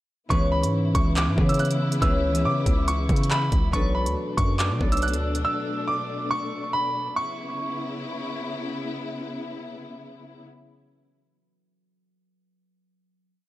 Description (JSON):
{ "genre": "hip hop, drill", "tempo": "140 BPM", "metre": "4/4", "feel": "half-time", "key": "C# phrygian", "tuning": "A4 = 440 Hz", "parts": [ { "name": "bright grand piano", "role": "melody", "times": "0.3-8.4 s", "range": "B5 to F#6", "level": "-28 LUFS", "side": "right 1 dB", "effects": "low-pass filter, digital delay" }, { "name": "concert harp", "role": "accompaniment", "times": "0.3-7.2 s", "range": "E3 to D5", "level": "-27 LUFS", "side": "equal", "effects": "low-pass filter" }, { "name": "warm studio string section", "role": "sustained chords", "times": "0.3-10.4 s", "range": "B2 to E4", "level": "-33 LUFS", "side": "left 3 dB", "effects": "none" }, { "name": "hard-hitting 808-style bass", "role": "bass", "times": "0.3-5.4 s", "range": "B1 to C#3", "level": "-26 LUFS", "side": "equal", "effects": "none" }, { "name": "drill drum kit", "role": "drums", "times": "0.3-5.4 s", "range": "handclaps, hi-hat, kick drum", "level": "-24 LUFS", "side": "equal", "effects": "none" } ], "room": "light reverb, studio ambience", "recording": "none", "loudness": "-22 LUFS", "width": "side -16 dB against mid", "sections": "0.3-7.2 hook; 7.2-10.6 final chord", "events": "none", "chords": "0.3 C#m7; 3.7 Bm7; 7.2 C#m7" }